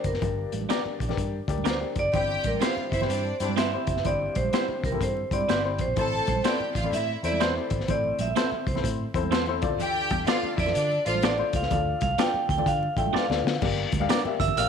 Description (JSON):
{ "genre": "uptempo 1960s-style soul", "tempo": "125 BPM", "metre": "4/4", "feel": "swing 64% on 8ths", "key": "G dorian", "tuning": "A4 = 441 Hz", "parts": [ { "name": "vibraphone with medium hard mallets", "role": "melody", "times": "0.0-14.7 s", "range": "Bb4 to G5", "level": "-28 LUFS", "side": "right 2 dB", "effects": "slapback echo" }, { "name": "dark upright piano", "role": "accompaniment", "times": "0.0-14.7 s", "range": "G2 to F5", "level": "-32 LUFS", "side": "left 9 dB", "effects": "none" }, { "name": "vintage muted fingered electric bass", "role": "bass", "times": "0.0-14.7 s", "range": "F#1 to D3", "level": "-31 LUFS", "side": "right 1 dB", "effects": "none" }, { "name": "crunchy breakbeat drum kit", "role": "drums", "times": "0.0-14.7 s", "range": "crash cymbal, hi-hat, kick drum, snare drum", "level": "-29 LUFS", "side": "left 3 dB", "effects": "none" }, { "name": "congas", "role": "percussion", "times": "0.2-14.6 s", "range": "none", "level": "-37 LUFS", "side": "right 11 dB", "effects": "none" }, { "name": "clean electric guitar", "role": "stabs", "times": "0.7-14.2 s", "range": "C4 to D5", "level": "-31 LUFS", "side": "right 12 dB", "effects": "none" }, { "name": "clear studio string section", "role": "second line", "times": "2.1-11.2, 14.6-14.7 s", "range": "Bb3 to A5", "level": "-31 LUFS", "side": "equal", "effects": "none" }, { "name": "glockenspiel with hard plastic mallets", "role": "second line", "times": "14.4-14.7 s", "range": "E6 to F6", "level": "-26 LUFS", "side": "right 13 dB", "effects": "none" } ], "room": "moderate echo chamber reverb, RT60 1.4 s", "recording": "1960s-style stereo with parts hard left and right", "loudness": "-23 LUFS", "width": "side -7 dB against mid", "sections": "0.0-13.6 A section; 13.6-14.7 B section", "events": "vibraphone solo 0.0-13.6; drum fill 13.1-13.6", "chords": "0.0 Gm; 2.1 C; 6.0 Am; 9.6 Dm; 13.6 Gm" }